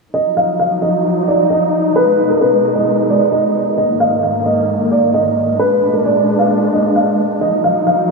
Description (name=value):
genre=hip hop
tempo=132 BPM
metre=4/4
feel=half-time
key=Eb harmonic minor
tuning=A4 = 440 Hz
part: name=felt-muted upright piano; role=melody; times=0.1-8.1 s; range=Bb4 to F5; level=-14 LUFS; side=right 1 dB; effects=tape echo
part: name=warm studio string section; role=sustained chords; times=0.1-8.1 s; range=Ab2 to Eb4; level=-16 LUFS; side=left 1 dB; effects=none
room=wet cathedral reverb, RT60 5.5 s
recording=dreamy mix soaked in reverb, vinyl crackle, low-pass filter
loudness=-12 LUFS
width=side -3 dB against mid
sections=0.1-8.1 A section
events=none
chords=0.1 Ebmadd9; 2.0 B6; 3.8 Absus2; 5.6 Bb7; 7.4 Ebmadd9